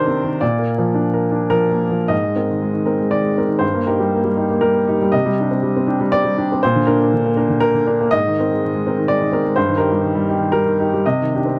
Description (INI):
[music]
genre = neoclassical minimalist piano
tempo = 97-129 BPM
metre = 3/4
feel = rubato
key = unclear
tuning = A4 = 440 Hz
[part]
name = clear upright piano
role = solo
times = 0.0-11.6 s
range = G2 to Eb5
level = -18 LUFS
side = equal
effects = none
[sound]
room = small room ambience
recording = dry, close 1970s-style studio recording, vinyl crackle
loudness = -18 LUFS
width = mono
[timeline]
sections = 0.0-2.1 A section; 2.1-11.6 B section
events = none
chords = 0.4 Bb; 2.1 Abadd9; 3.6 Eb/G; 5.1 Cmadd9; 6.6 Bb; 8.1 Abadd9; 9.6 Eb/G; 11.0 Cmadd9